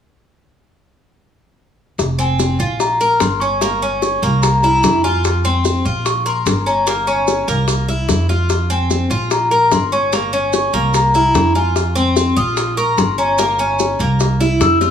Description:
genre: latin, Cuban son and guajira.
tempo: 148 BPM.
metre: 4/4.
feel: straight.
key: F minor.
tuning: A4 = 440 Hz.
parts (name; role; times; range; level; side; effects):
upright bass; bass; 2.0-14.9 s; F1 to F2; -19 LUFS; right 1 dB; none.
bongos; percussion; 2.0-14.9 s; none; -21 LUFS; left 5 dB; none.
maracas; percussion; 2.0-14.9 s; none; -28 LUFS; right 6 dB; none.
large celesta; melody; 2.2-14.9 s; Ab5 to E6; -18 LUFS; left 1 dB; plate reverb.
Cuban tres; arpeggios; 2.2-14.9 s; Bb3 to Bb4; -18 LUFS; equal; none.
room: moderate large studio reverb, RT60 0.9 s.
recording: none.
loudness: -13 LUFS.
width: side -8 dB against mid.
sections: 2.0-14.9 A section.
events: none.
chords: 2.0 Fm; 2.8 Bbm; 3.6 Gdim; 4.4 C7; 5.2 F5; 6.1 Bbm; 6.9 Gdim; 7.7 C7; 8.5 Fm; 9.3 Bbm; 10.1 Gdim; 10.9 C7; 11.8 F5; 12.6 Bbm; 13.4 Gdim; 14.2 C7.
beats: | 1.99 2.40 2.80 3.21 | 3.62 4.02 4.43 4.84 | 5.24 5.65 6.06 6.46 | 6.87 7.28 7.68 8.09 | 8.50 8.90 9.31 9.72 | 10.12 10.53 10.94 11.35 | 11.75 12.16 12.57 12.98 | 13.38 13.79 14.20 14.61.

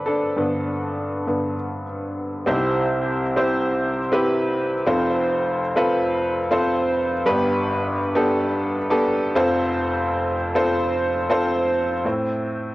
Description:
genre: pop.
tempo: 100 BPM.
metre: 4/4.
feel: straight.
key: unclear.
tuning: A4 = 439 Hz.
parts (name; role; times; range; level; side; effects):
bright upright piano; solo; 0.0-12.7 s; F1 to C5; -19 LUFS; equal; none.
room: light reverb, small room reverb.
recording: home recording on cassette.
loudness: -19 LUFS.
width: side -18 dB against mid.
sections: 0.0-2.5 A section; 2.5-12.0 B section.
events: upright piano solo 0.0-2.5.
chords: 0.0 Gadd9; 2.5 C; 4.9 F; 7.3 G; 9.4 F; 12.0 Am.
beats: | 0.08 0.68 1.27 1.87 | 2.47 3.07 3.67 4.27 | 4.87 5.47 6.07 6.67 | 7.26 7.86 8.46 9.06 | 9.66 10.25 10.85 11.45 | 12.05 12.64.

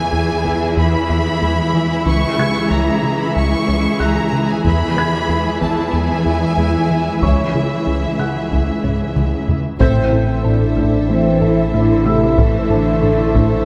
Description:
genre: cinematic, hybrid orchestral and electronic film score.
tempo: 93 BPM.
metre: 4/4.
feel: straight.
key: unclear.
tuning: A4 = 440 Hz.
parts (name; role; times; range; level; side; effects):
rich symphonic violin section; melody; 0.0-13.7 s; E5 to C#6; -27 LUFS; equal; none.
warm symphonic violin section; second line; 0.0-13.7 s; G#4 to E5; -29 LUFS; equal; none.
rich symphonic viola section; accompaniment; 0.0-13.7 s; E3 to A4; -26 LUFS; equal; none.
ethereal airy pad; sustained chords; 0.0-13.7 s; E3 to E5; -26 LUFS; equal; ensemble chorus, built-in reverb.
warm symphonic cello section; bass; 0.0-13.7 s; C#2 to E3; -24 LUFS; equal; none.
thumb-piano-like synth pluck; arpeggios; 0.1-13.5 s; C#3 to A4; -29 LUFS; equal; none.
rubbery square bass; riff; 0.1-13.5 s; C#2 to A3; -22 LUFS; equal; none.
taiko ensemble; drums; 0.5-0.8, 4.7-13.7 s; none; -24 LUFS; equal; none.
felt-muted upright piano; texture; 2.4-13.7 s; C#5 to G#6; -31 LUFS; equal; digital delay.
warm French horn section; sustained chords; 9.8-13.7 s; A3 to E4; -21 LUFS; equal; none.
punchy sub bass; bass; 9.8-13.7 s; A1; -26 LUFS; equal; none.
warm symphonic double bass section; bass; 9.8-13.7 s; A1; -26 LUFS; equal; none.
room: wet concert hall reverb, RT60 2.5 s.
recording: none.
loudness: -16 LUFS.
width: mono.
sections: 0.0-9.8 A section; 9.8-13.7 B section.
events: drum fill 8.8-9.8; band accent 9.8-10.5.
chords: 0.0 E; 2.1 C#m; 4.6 E; 7.2 C#m; 9.8 Am.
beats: 0.13 0.77 1.42 | 2.06 2.71 3.35 4.00 | 4.64 5.29 5.93 6.58 | 7.23 7.87 8.52 9.16 | 9.81 10.45 11.10 11.74 | 12.39 13.03.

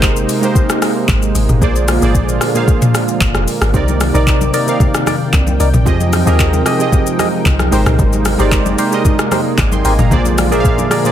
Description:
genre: amapiano.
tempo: 113 BPM.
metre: 4/4.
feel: straight.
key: unclear.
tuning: A4 = 440 Hz.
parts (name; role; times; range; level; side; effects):
warm analog keys; accompaniment; 0.0-11.1 s; Bb2 to D6; -18 LUFS; right 3 dB; chorus.
warm analog pad; sustained chords; 0.0-11.1 s; C3 to G5; -20 LUFS; equal; chorus, sidechain pumping.
deep log drum bass; bass; 0.0-10.9 s; F1 to F2; -15 LUFS; equal; none.
smooth R&B drum kit; drums; 0.0-11.1 s; handclaps, hi-hat, kick drum, rim click, shaker, toms; -15 LUFS; equal; none.
congas; percussion; 3.7-10.9 s; none; -23 LUFS; left 2 dB; none.
percussive organ stab; stabs; 4.1-11.1 s; Eb4 to Eb5; -20 LUFS; left 1 dB; chorus, phaser, ping-pong delay.
room: digital ambience.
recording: dense, heavily limited modern master.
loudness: -11 LUFS.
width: side -10 dB against mid.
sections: 0.0-11.1 A section.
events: none.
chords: 0.0 Abmaj9; 1.6 Bb7; 3.7 Cm9; 5.9 Fm9; 7.7 Abmaj9; 10.1 Bb7.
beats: 0.03 0.56 1.09 | 1.62 2.15 2.68 3.21 | 3.74 4.27 4.80 5.33 | 5.87 6.40 6.93 7.46 | 7.99 8.52 9.05 9.58 | 10.11 10.64.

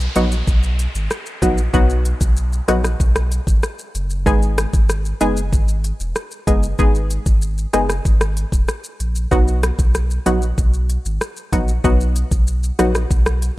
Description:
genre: dancehall.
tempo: 95 BPM.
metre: 4/4.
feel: straight.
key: unclear.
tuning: A4 = 440 Hz.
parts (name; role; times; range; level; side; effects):
warm sub bass; bass; 0.0-13.5 s; E1 to B1; -19 LUFS; equal; none.
island pop drum kit; drums; 0.0-13.6 s; hi-hat, kick drum, rim click, shaker; -18 LUFS; equal; none.
downlifter; sound effects; 0.0-4.3 s; none; -33 LUFS; equal; none.
punchy chord stab; accompaniment; 0.2-13.0 s; F#3 to G#4; -20 LUFS; equal; chorus.
room: little or no reverb.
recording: rough home demo mix.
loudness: -16 LUFS.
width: side -18 dB against mid.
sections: 0.0-13.6 A section.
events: none.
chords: 0.0 B; 4.3 G#m; 9.3 B.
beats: 0.47 1.11 | 1.74 2.37 3.00 3.63 | 4.26 4.90 5.53 6.16 | 6.79 7.42 8.05 8.69 | 9.32 9.95 10.58 11.21 | 11.84 12.47 13.11.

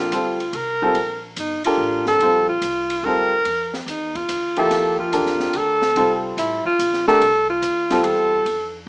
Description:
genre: modal jazz.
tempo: 144 BPM.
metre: 3/4.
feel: swing 67% on 8ths.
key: F major.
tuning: A4 = 435 Hz.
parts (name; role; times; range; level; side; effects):
clear alto saxophone; second line; 0.0-8.7 s; Eb4 to Bb4; -19 LUFS; equal; none.
bright upright piano; accompaniment; 0.0-8.4 s; F3 to Bb4; -21 LUFS; equal; none.
upright bass; bass; 0.0-8.9 s; G1 to F2; -38 LUFS; equal; none.
open jazz drum kit; drums; 0.1-8.6 s; hi-hat, kick drum, ride cymbal, snare drum; -31 LUFS; equal; none.
room: moderate studio reverb, RT60 0.8 s.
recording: small speaker sound.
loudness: -17 LUFS.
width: side -27 dB against mid.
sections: 0.0-8.9 A section.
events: alto saxophone solo 0.0-8.9.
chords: 0.0 Bbmaj9; 4.7 Fmaj9.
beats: 0.12 0.54 | 0.96 1.38 1.79 | 2.21 2.63 3.05 | 3.46 3.88 4.30 | 4.71 5.13 5.55 | 5.96 6.38 6.80 | 7.21 7.63 8.05 | 8.46 8.88.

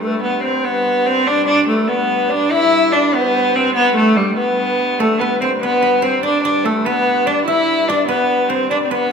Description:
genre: medieval.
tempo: 97 BPM (dotted quarters).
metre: 6/8.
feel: straight.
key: G major.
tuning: A4 = 439 Hz.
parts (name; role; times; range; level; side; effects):
clear viola da gamba; melody; 0.0-9.1 s; G3 to E4; -15 LUFS; right 1 dB; none.
breathy mellow bass recorder; second line; 0.0-9.1 s; A4 to E5; -21 LUFS; left 4 dB; none.
koto; second line; 0.0-1.4, 5.0-9.1 s; G4 to E5; -24 LUFS; right 5 dB; none.
dark hurdy-gurdy; drone; 0.0-9.1 s; G2; -26 LUFS; equal; none.
room: wet recital hall reverb, RT60 1.5 s.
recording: minimal, uncompressed stereo recording.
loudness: -13 LUFS.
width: side -6 dB against mid.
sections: 0.0-9.1 A section.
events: none.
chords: none.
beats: | 0.02 0.64 | 1.26 1.89 | 2.51 3.13 | 3.75 4.37 | 4.99 5.61 | 6.23 6.85 | 7.46 8.08 | 8.70.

